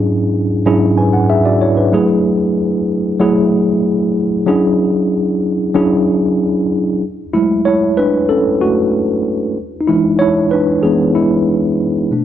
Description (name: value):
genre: soul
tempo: 94 BPM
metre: 4/4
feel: straight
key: unclear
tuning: A4 = 440 Hz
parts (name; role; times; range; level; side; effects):
- tine electric piano; solo; 0.0-12.2 s; G#2 to G#5; -12 LUFS; equal; medium stereo tremolo
room: moderate echo chamber reverb, RT60 2.2 s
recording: none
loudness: -12 LUFS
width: side -11 dB against mid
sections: 0.0-7.0 A section; 7.0-12.2 B section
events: tine electric piano solo 7.0-12.2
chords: 0.0 E13/G#; 1.9 F#m9; 4.5 E13; 7.0 F#m9; 9.6 E7